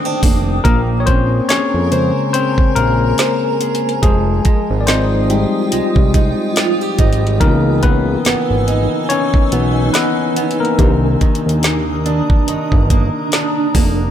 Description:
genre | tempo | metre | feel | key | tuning
contemporary R&B | 71 BPM | 4/4 | swing 58% on 16ths | Bb dorian | A4 = 440 Hz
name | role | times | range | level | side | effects
tine electric piano | accompaniment | 0.0-14.1 s | Db3 to D5 | -18 LUFS | left 5 dB | none
granular cloud pad | sustained chords | 0.0-14.1 s | D4 to Fb6 | -22 LUFS | right 1 dB | built-in reverb
fingerpicked acoustic archtop guitar | arpeggios | 0.0-14.1 s | C3 to C5 | -22 LUFS | right 6 dB | ping-pong delay
fat analog bass | bass | 0.2-14.1 s | F1 to F2 | -17 LUFS | right 1 dB | none
smooth R&B drum kit | drums | 0.2-14.0 s | hi-hat, kick drum, snare drum | -15 LUFS | equal | none
room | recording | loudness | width
digital ambience | none | -12 LUFS | side -10 dB against mid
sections
0.0-14.1 A section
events
tine electric piano solo 0.0-14.1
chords
0.0 Cm9; 0.6 Bbm9; 4.0 Fm9; 7.4 Dbm9; 10.8 Cm9

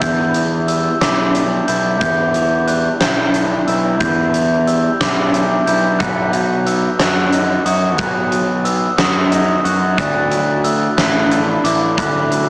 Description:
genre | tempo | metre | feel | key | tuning
post-rock | 60 BPM (dotted quarters) | 6/8 | straight | E minor | A4 = 440 Hz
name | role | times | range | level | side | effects
pedal steel guitar | sustained chords | 0.0-12.5 s | D#4 to B5 | -26 LUFS | equal | none
electric guitar through a small old amp | arpeggios | 0.0-12.5 s | E2 to F#4 | -19 LUFS | equal | analog delay, slapback echo
glockenspiel with rubber mallets | arpeggios | 0.0-12.5 s | D6 to G6 | -20 LUFS | equal | analog delay
fuzz picked electric bass | bass | 0.0-12.5 s | A1 to F#2 | -18 LUFS | equal | overdrive
huge arena drum kit | drums | 0.0-12.5 s | hi-hat, kick drum, snare drum | -19 LUFS | equal | none
room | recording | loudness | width
wet lush hall reverb, RT60 2.2 s | big arena sound, small speaker sound | -13 LUFS | side -27 dB against mid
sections
0.0-12.5 A section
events
none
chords
0.0 Em7; 6.0 B; 10.0 Dadd9

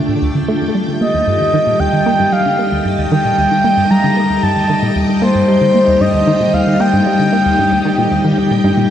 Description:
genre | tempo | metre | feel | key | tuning
ambient, sequencer-driven space music | 114 BPM | 4/4 | straight | unclear | A4 = 441 Hz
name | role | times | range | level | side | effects
string machine, full ensemble | sustained chords | 0.0-8.9 s | G3 to G5 | -16 LUFS | left 1 dB | ensemble chorus
bubbling stepped-filter texture | texture | 0.0-8.9 s | A3 to A6 | -29 LUFS | left 2 dB | none
tight sequenced synth | riff | 0.1-8.9 s | D2 to Bb3 | -17 LUFS | equal | chorus, tape echo
breathy flute-like synth lead | melody | 1.0-8.6 s | C5 to Bb5 | -15 LUFS | equal | chorus, tape echo
room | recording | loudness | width
wet plate reverb, RT60 3.1 s | echo-heavy mix, nothing above 10.4 kHz | -11 LUFS | side -10 dB against mid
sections
0.0-8.9 A section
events
filter sweep on synth arpeggio sound 0.0-8.9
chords
0.0 Dm; 0.7 Eb

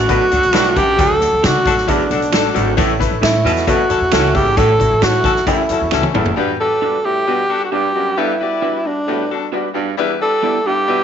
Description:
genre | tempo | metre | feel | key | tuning
uptempo 1960s-style soul | 134 BPM | 4/4 | straight | unclear | A4 = 440 Hz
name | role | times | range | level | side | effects
breathy tenor saxophone | melody | 0.0-11.0 s | D4 to A4 | -16 LUFS | right 1 dB | none
mellow tonewheel organ | sustained chords | 0.0-6.3 s | A4 to D6 | -28 LUFS | right 1 dB | none
warm baritone saxophone | riff | 0.0-11.0 s | D2 to B2 | -22 LUFS | right 11 dB | none
upright bass | bass | 0.0-6.3 s | F#1 to D3 | -21 LUFS | equal | none
bright baby grand piano | accompaniment | 0.1-11.0 s | E3 to B4 | -22 LUFS | left 11 dB | none
swinging big-band drum kit | drums | 0.1-6.4 s | hi-hat, kick drum, snare drum, toms | -20 LUFS | equal | none
bright saxophone section | second line | 0.3-11.0 s | B3 to D5 | -23 LUFS | left 11 dB | none
electric guitar through a small old amp | stabs | 0.5-10.6 s | B3 to D5 | -25 LUFS | right 11 dB | slapback echo
finger snaps | percussion | 0.5-6.0 s | none | -26 LUFS | right 10 dB | none
room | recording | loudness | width
light reverb, studio reverb | 1960s-style stereo with parts hard left and right, vinyl crackle, nothing above 7.7 kHz | -13 LUFS | side -8 dB against mid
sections
0.0-6.4 A section; 6.4-11.0 B section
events
drum fill 5.9-6.4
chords
0.0 D; 2.8 A; 6.4 Gmaj7; 10.0 Em7

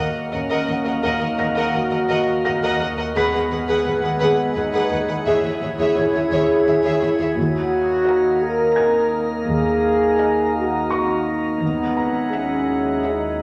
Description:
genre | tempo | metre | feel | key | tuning
cinematic, suspense film score | 85 BPM | 3/4 | straight | Eb phrygian | A4 = 440 Hz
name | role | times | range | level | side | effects
warm chamber violin section | melody | 0.0-13.4 s | Fb5 to Gb5 | -33 LUFS | equal | none
warm chamber violin section | second line | 0.0-13.4 s | B4 to E5 | -30 LUFS | equal | none
dark chamber viola section | accompaniment | 0.0-13.4 s | G#4 to Bb4 | -26 LUFS | equal | none
clear trombone section | sustained chords | 0.0-13.4 s | Eb3 to Fb4 | -29 LUFS | equal | none
dark French horn section | sustained chords | 0.0-13.4 s | Bb3 to Bb4 | -24 LUFS | equal | none
drifting glass-harmonics texture | sustained chords | 0.0-13.4 s | Eb4 to F#5 | -29 LUFS | equal | chorus, built-in reverb
warm chamber double bass section | bass | 0.0-12.2 s | Eb2 | -36 LUFS | equal | none
warm studio cello section | bass | 0.0-12.2 s | Eb2 | -33 LUFS | equal | none
organ-like drone | drone | 0.0-13.4 s | Eb2 | -37 LUFS | equal | ensemble chorus, built-in reverb
felt-muted upright piano | texture | 0.0-5.3, 8.8-13.4 s | Gb5 to B6 | -33 LUFS | equal | none
room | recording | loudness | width
wet recital hall reverb, RT60 1.5 s | none | -20 LUFS | mono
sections
0.0-13.4 A section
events
none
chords
0.0 Ebm; 3.2 Eadd9/Eb; 5.3 Dbm/Eb; 7.4 Ebm; 11.6 Eadd9/Eb

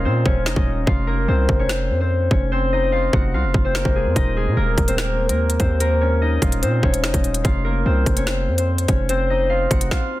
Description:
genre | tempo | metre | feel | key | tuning
hip hop, drill | 146 BPM | 4/4 | half-time | F minor | A4 = 440 Hz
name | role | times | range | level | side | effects
concert harp | melody | 0.0-10.2 s | Ab3 to Gb5 | -22 LUFS | left 1 dB | low-pass filter, ping-pong delay
hard-hitting 808-style bass | bass | 0.0-9.9 s | Eb1 to Bb2 | -20 LUFS | equal | none
drill drum kit | drums | 0.3-10.0 s | hi-hat, kick drum, snare drum | -20 LUFS | equal | none
room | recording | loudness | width
little or no reverb | dense, heavily limited modern master | -17 LUFS | side -16 dB against mid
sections
0.0-10.2 A section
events
break 0.0-4.2; stop 9.9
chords
0.0 Ebsus2; 0.9 F5; 4.2 Ebsus2; 7.4 F5

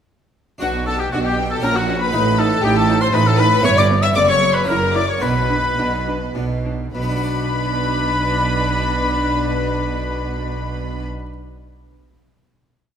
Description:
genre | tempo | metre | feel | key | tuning
classical, baroque-style concerto movement with solo episodes | 100-120 BPM | 3/4 | straight | B minor | A4 = 443 Hz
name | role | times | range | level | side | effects
warm chamber violin section | melody | 0.6-11.0 s | F#5 to E6 | -25 LUFS | left 4 dB | none
warm oboe | melody | 0.6-11.1 s | F#4 to E5 | -22 LUFS | left 2 dB | none
rich studio violin section | second line | 0.6-11.1 s | F#4 to E5 | -24 LUFS | left 3 dB | none
harpsichord | accompaniment | 0.6-11.3 s | F#2 to D5 | -28 LUFS | right 1 dB | none
rich studio viola section | accompaniment | 0.6-11.0 s | B3 to E4 | -26 LUFS | right 1 dB | none
rich chamber double bass section | bass | 0.6-11.0 s | F#1 to B1 | -24 LUFS | right 3 dB | none
warm chamber cello section | bass | 0.6-11.1 s | F#2 to B2 | -24 LUFS | right 4 dB | none
room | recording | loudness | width
wet concert hall reverb, RT60 1.8 s | none | -16 LUFS | side -8 dB against mid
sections
0.6-7.0 ritornello; 7.0-10.5 final chord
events
slowing down 2.9-7.0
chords
0.6 Bm; 1.6 F#/A#; 2.1 B7b9b13/A; 3.7 Em/G; 4.2 B5/F#; 4.7 F#7; 5.2 Bm

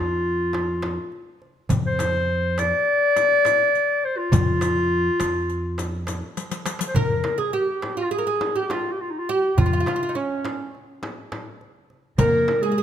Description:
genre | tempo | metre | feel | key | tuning
Turkish makam ensemble | 206 BPM (eighths) | 9/8 | straight | F makam ussak from 7.0 s | A4 = 440 Hz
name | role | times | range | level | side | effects
mellow clarinet | melody | 0.0-12.8 s | Db4 to D5-25c | -21 LUFS | left 1 dB | none
upright bass | bass | 0.0-12.4 s | F2 | -26 LUFS | right 1 dB | none
darbuka | percussion | 0.5-12.6 s | none | -28 LUFS | right 1 dB | none
frame drum | percussion | 0.5-12.6 s | none | -29 LUFS | left 2 dB | none
riq | percussion | 1.7-6.9, 12.2-12.3 s | none | -33 LUFS | left 7 dB | none
oud | second line | 7.0-12.8 s | Db4 to Bb4 | -27 LUFS | right 5 dB | none
warm studio cello section | second line | 12.2-12.8 s | Ab3 to Bb3 | -25 LUFS | equal | none
room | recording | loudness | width
moderate recital hall reverb, RT60 1.6 s | close, detailed microphones | -20 LUFS | side -9 dB against mid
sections
0.0-7.0 A section; 7.0-12.8 B section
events
drum fill 6.4-7.0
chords
none

